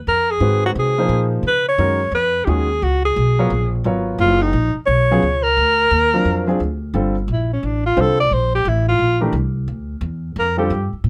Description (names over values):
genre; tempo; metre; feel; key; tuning
modal jazz; 175 BPM; 4/4; swing 65% on 8ths; G dorian from 6.9 s; A4 = 440 Hz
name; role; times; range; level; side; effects
upright bass; bass; 0.0-11.1 s; Gb1 to Db3; -22 LUFS; equal; none
breathy alto saxophone; melody; 0.1-10.9 s; C#4 to D5; -20 LUFS; equal; none
warm baby grand piano; accompaniment; 0.4-10.7 s; Db3 to Db5; -23 LUFS; equal; none
room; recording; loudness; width
light reverb; close, detailed microphones; -18 LUFS; mono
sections
0.0-6.9 A section; 6.9-11.1 B section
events
alto saxophone solo 6.9-11.1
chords
0.0 Bb9sus4; 1.4 Db9sus4; 5.6 D7alt; 6.9 Gm11